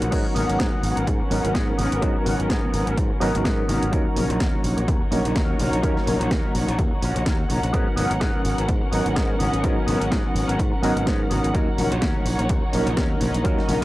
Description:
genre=filtered disco house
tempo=126 BPM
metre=4/4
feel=swing 57% on 16ths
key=G# minor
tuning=A4 = 440 Hz
part: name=bright reed electric piano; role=accompaniment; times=0.0-13.8 s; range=F#3 to A#4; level=-26 LUFS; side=equal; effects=fast tremolo, phaser, sidechain pumping, low-pass filter
part: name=warm symphonic violin section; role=sustained chords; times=0.0-13.8 s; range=B3 to F#5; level=-30 LUFS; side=equal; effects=sidechain pumping, low-pass filter
part: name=electric guitar with an envelope filter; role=riff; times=0.0-13.8 s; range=B3 to A#4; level=-30 LUFS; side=left 1 dB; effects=analog chorus, sidechain pumping, low-pass filter
part: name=modern bright fingered electric bass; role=bass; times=0.0-13.8 s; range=G#1 to G#2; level=-26 LUFS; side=equal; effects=sidechain pumping, low-pass filter
part: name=house drum kit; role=drums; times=0.0-13.8 s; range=crash cymbal, hi-hat, snare drum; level=-30 LUFS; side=equal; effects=none
part: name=tambourine and congas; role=percussion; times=0.0-13.8 s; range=none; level=-34 LUFS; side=left 1 dB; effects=none
part: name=electronic kick drum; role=drums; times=0.1-13.6 s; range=none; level=-24 LUFS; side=equal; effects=none
room=digital ambience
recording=dry, gritty hardware recording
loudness=-19 LUFS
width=side -17 dB against mid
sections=0.0-13.8 A section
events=none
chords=0.1 G#m11; 3.9 D#m7; 7.7 G#m11; 11.5 D#m7

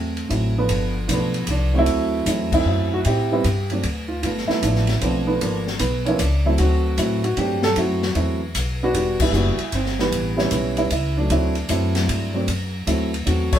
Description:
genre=jazz piano trio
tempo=153 BPM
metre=3/4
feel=swing 66% on 8ths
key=D mixolydian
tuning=A4 = 441 Hz
part: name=dark upright piano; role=melody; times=0.0-13.6 s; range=D3 to C#5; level=-21 LUFS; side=right 2 dB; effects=none
part: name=upright bass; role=bass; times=0.0-13.6 s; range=E1 to A2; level=-23 LUFS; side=left 1 dB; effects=none
part: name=open jazz drum kit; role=drums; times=0.2-13.6 s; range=crash cymbal, hi-hat, kick drum, ride cymbal, snare drum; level=-27 LUFS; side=left 2 dB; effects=none
room=light reverb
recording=band playing live in one room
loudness=-18 LUFS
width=side -10 dB against mid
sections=0.0-13.6 A section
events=band accent 2.5, 9.1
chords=0.0 D9 (rootless); 0.7 G9; 1.9 D9; 3.1 Am7; 3.8 Dm; 4.2 G9; 5.4 G#dim7; 6.6 D7; 7.8 F#m7b5; 8.5 Bm; 8.9 Em7; 10.1 A9; 11.3 D9

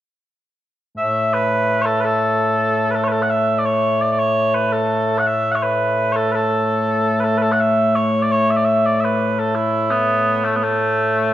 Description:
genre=scottish traditional, Scottish pipe music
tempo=112 BPM (dotted quarters)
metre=6/8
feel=straight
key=A major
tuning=A4 = 442 Hz
part: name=mellow small bagpipes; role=solo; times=1.0-11.3 s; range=A2 to F#5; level=-16 LUFS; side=equal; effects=none
room=moderate scoring stage reverb, RT60 1.7 s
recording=dark, warm production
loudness=-16 LUFS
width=side -12 dB against mid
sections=1.0-9.6 A section; 9.6-11.3 A section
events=none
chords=none

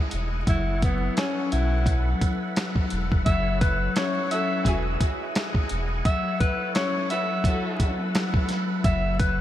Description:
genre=hip hop, boom-bap hip-hop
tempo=86 BPM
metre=4/4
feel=swing 56% on 16ths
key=F# dorian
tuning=A4 = 440 Hz
part: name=tonewheel organ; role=sustained chords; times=0.0-9.4 s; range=E4 to F#5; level=-34 LUFS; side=right 1 dB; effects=overdrive, chorus vibrato, slow rotary speaker, high-pass filter, low-pass filter
part: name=sub bass with octave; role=bass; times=0.1-9.4 s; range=E1 to B1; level=-26 LUFS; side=equal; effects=none
part: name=dusty soul sampler-style drum kit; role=drums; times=0.1-9.4 s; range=hi-hat, kick drum, snare drum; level=-26 LUFS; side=equal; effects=none
part: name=breathy tenor saxophone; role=melody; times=0.5-9.4 s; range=B3 to E5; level=-29 LUFS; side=equal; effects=high-pass filter, low-pass filter, tape echo
part: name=vibraphone with soft mallets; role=accompaniment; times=0.5-9.4 s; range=F#3 to C#4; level=-30 LUFS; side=left 3 dB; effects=high-pass filter, low-pass filter
part: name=dark studio string section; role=stabs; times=4.3-7.9 s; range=E4 to B4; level=-36 LUFS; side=right 1 dB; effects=high-pass filter, low-pass filter, tape echo
room=moderate huge ambient reverb, RT60 5.2 s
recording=dreamy mix soaked in reverb, vinyl crackle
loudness=-22 LUFS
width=side -12 dB against mid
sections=0.0-3.3 A section; 3.3-9.4 B section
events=none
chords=0.5 F#m7; 1.5 B7sus4; 3.3 F#m7; 4.7 Emaj9; 6.1 F#m7; 7.1 B7sus4; 8.8 F#m7

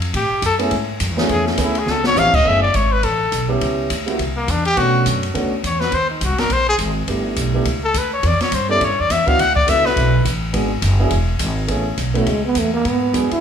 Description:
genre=jazz, small-group swing and bop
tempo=208 BPM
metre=4/4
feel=swing 60% on 8ths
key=F# minor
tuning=A4 = 444 Hz
part: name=upright bass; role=bass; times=0.0-13.3 s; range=C#1 to B2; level=-21 LUFS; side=equal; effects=none
part: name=open jazz drum kit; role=drums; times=0.0-13.4 s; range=crash cymbal, hi-hat, kick drum, ride cymbal, snare drum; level=-24 LUFS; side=equal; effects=none
part: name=warm trumpet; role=melody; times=0.2-10.3 s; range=A#3 to F#5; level=-18 LUFS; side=left 2 dB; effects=none
part: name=warm grand piano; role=accompaniment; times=0.6-13.3 s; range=E#3 to A4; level=-22 LUFS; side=right 1 dB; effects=none
part: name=growling trombone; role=second line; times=12.2-13.4 s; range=G#3 to E4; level=-18 LUFS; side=right 3 dB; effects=none
room=moderate large studio reverb, RT60 1.2 s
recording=band playing live in one room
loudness=-15 LUFS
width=side -8 dB against mid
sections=0.0-2.5 A section; 2.5-11.7 A section; 11.7-13.4 A section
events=trumpet solo 0.0-11.7; drum fill 1.9; trombone solo 11.7-13.4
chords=0.1 Amaj7; 1.9 C#7alt; 2.5 F#m11; 3.6 C#m7b5; 4.2 C; 4.8 Bm9; 5.9 G#add9; 7.1 G6; 8.2 Em; 8.8 Asus2; 9.4 D6; 10.5 G#m7b5; 11.1 E; 11.7 Amaj7; 12.8 G#m7b5

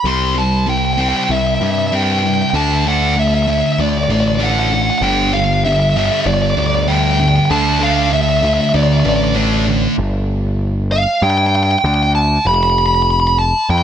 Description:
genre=post-rock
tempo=97 BPM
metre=4/4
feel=straight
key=unclear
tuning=A4 = 436 Hz
part: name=dark smooth lead guitar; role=melody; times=0.0-13.8 s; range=D5 to C6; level=-16 LUFS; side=equal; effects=overdrive, analog delay
part: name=growling picked electric bass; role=bass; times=0.0-13.8 s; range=F1 to G2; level=-17 LUFS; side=equal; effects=overdrive
part: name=thick fuzz guitar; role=riff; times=0.1-10.0 s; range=G2 to D4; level=-17 LUFS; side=equal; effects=distortion
room=light reverb, digital ambience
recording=none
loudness=-12 LUFS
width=side -9 dB against mid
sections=0.0-10.0 A section; 10.0-13.8 B section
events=build-up 0.0-10.0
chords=0.0 C; 2.5 D; 5.0 G5; 7.5 Dsus2; 10.0 G5; 12.5 N.C.

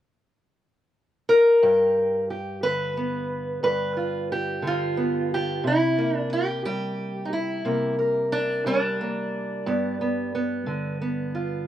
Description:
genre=acoustic country blues, solo or duo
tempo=60 BPM (dotted quarters)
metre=12/8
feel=straight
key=G mixolydian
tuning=A4 = 440 Hz
part: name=fingerpicked steel-string acoustic guitar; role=solo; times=1.3-11.7 s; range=G2 to B4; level=-22 LUFS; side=equal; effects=none
room=little or no reverb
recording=recorded outdoors, with no room sound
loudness=-22 LUFS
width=side -11 dB against mid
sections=0.0-1.6 A section; 1.6-11.7 B section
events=none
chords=0.0 N.C.; 1.6 G7; 5.6 C7; 9.7 G7

